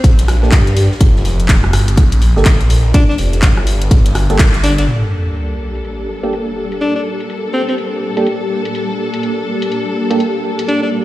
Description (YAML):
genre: bass house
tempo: 124 BPM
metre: 4/4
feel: swing 61% on 16ths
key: G minor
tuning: A4 = 437 Hz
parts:
  - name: phased detuned saw bass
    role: bass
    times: 0.0-4.9 s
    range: F1 to G2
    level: -13 LUFS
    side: equal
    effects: phaser, overdrive, sidechain pumping
  - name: big rock drum kit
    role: drums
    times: 0.0-4.9 s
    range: ride cymbal, snare drum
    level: -31 LUFS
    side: left 1 dB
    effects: none
  - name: electronic kick drum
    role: drums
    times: 0.0-4.5 s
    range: none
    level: -10 LUFS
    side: equal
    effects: none
  - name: house drum kit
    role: drums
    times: 0.0-10.8 s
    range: handclaps, hi-hat, rim click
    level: -21 LUFS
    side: equal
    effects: low-pass filter on hats, low-pass filter on snare, low-pass filter on room
  - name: percussive organ stab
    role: stabs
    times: 0.4-10.2 s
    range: Bb3 to A4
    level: -21 LUFS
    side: right 3 dB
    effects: analog chorus, sidechain pumping, dub echo
  - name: bright alto saxophone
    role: melody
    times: 2.9-7.7, 10.7-10.9 s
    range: C4 to D4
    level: -20 LUFS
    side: left 1 dB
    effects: dub echo
  - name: muted studio string section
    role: sustained chords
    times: 4.9-11.0 s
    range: G3 to A4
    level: -21 LUFS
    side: left 2 dB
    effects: sidechain pumping
  - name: sub drop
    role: sound effects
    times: 4.9-6.8 s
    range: none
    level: -20 LUFS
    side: equal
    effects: none
  - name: granular cloud pad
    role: texture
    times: 5.7-11.0 s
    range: Bb3 to A5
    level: -21 LUFS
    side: equal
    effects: built-in reverb, sidechain pumping
room: light reverb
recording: played on a big sound system in a bare room, stone room reverb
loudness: -12 LUFS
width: side -16 dB against mid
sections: 0.0-4.9 A section; 4.9-11.0 B section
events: band accent 4.4; impact 4.9-6.8; filter sweep on drum 4.9-11.0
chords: 0.0 Gmadd9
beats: 0.04 0.52 | 1.01 1.49 1.98 2.46 | 2.94 3.43 3.91 4.39 | 4.88 5.36 5.85 6.33 | 6.81 7.30 7.78 8.27 | 8.75 9.23 9.72 10.20 | 10.69